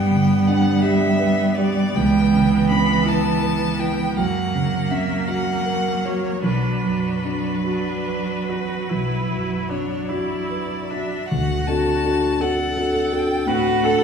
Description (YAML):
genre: classical, slow romantic movement for piano quartet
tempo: 48-57 BPM (dotted quarters)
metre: 12/8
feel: rubato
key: B minor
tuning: A4 = 440 Hz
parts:
  - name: clear violin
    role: melody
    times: 0.0-14.0 s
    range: B4 to B5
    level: -26 LUFS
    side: left 1 dB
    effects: none
  - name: clear cello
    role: second line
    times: 0.0-14.0 s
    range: E3 to A4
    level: -24 LUFS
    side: right 4 dB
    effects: none
  - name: clear viola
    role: accompaniment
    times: 0.0-14.0 s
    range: A#3 to B4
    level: -27 LUFS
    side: right 2 dB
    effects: none
  - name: dark concert grand piano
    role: accompaniment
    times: 0.0-14.0 s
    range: B1 to B4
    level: -21 LUFS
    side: equal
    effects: none
room: wet recital hall reverb, RT60 1.5 s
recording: heard from further back in the room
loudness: -18 LUFS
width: side -6 dB against mid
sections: 0.0-11.3 A section; 11.3-14.0 B section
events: none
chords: 0.0 G; 1.9 C#m7b5; 4.2 F#; 6.4 Bm; 11.3 D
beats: 0.81 | 1.95 3.06 4.16 5.28 | 6.45 7.66 8.91 10.11 | 11.31 12.41 13.48